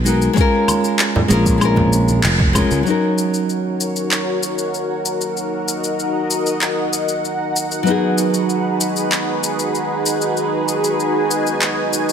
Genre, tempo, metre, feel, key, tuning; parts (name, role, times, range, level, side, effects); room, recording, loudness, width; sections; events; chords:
sunset chillout; 96 BPM; 4/4; straight; Eb minor; A4 = 439 Hz
nylon-string guitar; accompaniment; 0.0-12.1 s; Gb3 to Bb4; -20 LUFS; moving between left 4 dB and right 5 dB; auto-pan, digital delay
sustaining fretless electric bass; bass; 0.0-2.8 s; F1 to Db2; -17 LUFS; right 1 dB; tube saturation
electronic shaker, woodblock and handclaps; drums; 0.1-12.1 s; -22 LUFS; left 2 dB; overdrive
electronic kick drum; drums; 0.4-2.7 s; -18 LUFS; right 1 dB; overdrive
congas; percussion; 0.7-2.2 s; -21 LUFS; equal
lush unison pad; sustained chords; 3.4-12.1 s; Eb4 to Ab5; -19 LUFS; equal; chorus, phaser
moderate concert hall reverb, RT60 2.1 s; faint mains hum; -15 LUFS; side -7 dB against mid
0.0-2.9 A section; 2.9-12.1 B section
band accent 2.2-2.6
0.4 Bbm7; 2.9 Ebm7; 7.9 Abm7